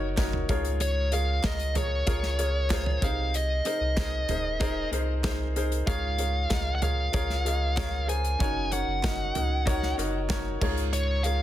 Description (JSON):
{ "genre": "piano-driven pop", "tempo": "95 BPM", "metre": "4/4", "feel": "straight", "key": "Db major", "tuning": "A4 = 441 Hz", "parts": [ { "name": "clear concert grand piano", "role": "accompaniment", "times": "0.0-11.4 s", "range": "Ab2 to Eb5", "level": "-32 LUFS", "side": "left 2 dB", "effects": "none" }, { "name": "warm sub bass", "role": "bass", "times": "0.0-11.4 s", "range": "Eb1 to Db2", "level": "-29 LUFS", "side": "equal", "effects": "none" }, { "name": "modern studio drum kit", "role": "drums", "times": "0.2-11.4 s", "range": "crash cymbal, hi-hat, kick drum, snare drum, toms", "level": "-30 LUFS", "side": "equal", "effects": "none" }, { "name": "group handclap", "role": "percussion", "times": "0.2-10.4 s", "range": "none", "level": "-46 LUFS", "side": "right 4 dB", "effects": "none" }, { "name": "fuzz lead guitar", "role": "melody", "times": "0.8-11.4 s", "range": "Db5 to Ab5", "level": "-31 LUFS", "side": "right 1 dB", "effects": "distortion, ping-pong delay" } ], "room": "studio reverb", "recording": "dense, heavily limited modern master", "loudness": "-25 LUFS", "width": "side -12 dB against mid", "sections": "0.0-11.4 A section", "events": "none", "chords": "0.5 Db6; 3.0 Abadd9; 5.9 Db6; 8.4 Gb6; 10.6 Db6" }